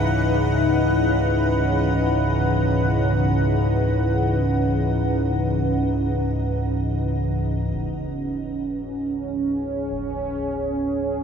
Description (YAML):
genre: dark ambient drone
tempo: 55 BPM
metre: 4/4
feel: straight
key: unclear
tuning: A4 = 442 Hz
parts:
  - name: sweeping resonant pad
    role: sustained chords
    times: 0.0-11.2 s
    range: C#3 to F#5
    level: -22 LUFS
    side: equal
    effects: chorus
  - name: gamelan-type bossed gongs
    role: arpeggios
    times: 0.0-10.5 s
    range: none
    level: barely audible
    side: none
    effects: none
  - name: deep rumbling drone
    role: drone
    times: 0.0-11.2 s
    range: C#2 to G#2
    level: -24 LUFS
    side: equal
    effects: built-in reverb, wide subtle chorus
  - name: icy glass pad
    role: texture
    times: 0.0-7.8 s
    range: D#4 to D#5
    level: -28 LUFS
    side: left 4 dB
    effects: chorus, built-in reverb
  - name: concert bass drum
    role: percussion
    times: 7.7-10.1 s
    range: none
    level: -42 LUFS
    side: equal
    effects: low-pass filter on kick
room: wet huge ambient reverb, RT60 7.6 s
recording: dark, warm production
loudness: -20 LUFS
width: side -7 dB against mid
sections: 0.0-7.8 A section; 7.8-11.2 B section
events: filter sweep on synth drone 0.0-7.8, 7.8-11.2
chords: 0.0 E/C#